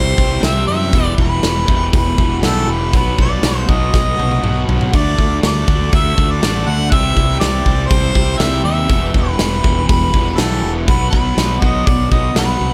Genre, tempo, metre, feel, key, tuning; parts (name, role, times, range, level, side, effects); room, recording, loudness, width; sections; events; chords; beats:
classic rock; 121 BPM; 4/4; straight; E minor; A4 = 440 Hz
warm harmonica; melody; 0.0-12.7 s; A4 to F#5; -22 LUFS; equal; tape echo
cranked stack guitar; riff; 0.0-12.7 s; E2 to D4; -26 LUFS; equal; overdrive, phaser
distorted electric guitar; riff; 0.0-12.7 s; E2 to G4; -26 LUFS; equal; distortion
fuzz fingered electric bass; bass; 0.0-12.7 s; E1 to F#2; -21 LUFS; equal; overdrive
big rock drum kit; drums; 0.2-12.5 s; hi-hat, kick drum, snare drum, toms; -19 LUFS; equal
small room reverb; -15 LUFS; mono
0.0-12.7 A section
drum fill 3.9-4.9
0.0 C; 0.9 Em; 2.9 B; 4.9 D; 6.9 C; 8.9 Em; 10.9 B
0.42 | 0.93 1.43 1.93 2.43 | 2.93 3.43 3.93 4.43 | 4.93 5.42 5.92 6.42 | 6.91 7.41 7.91 8.40 | 8.90 9.39 9.89 10.38 | 10.88 11.37 11.87 12.36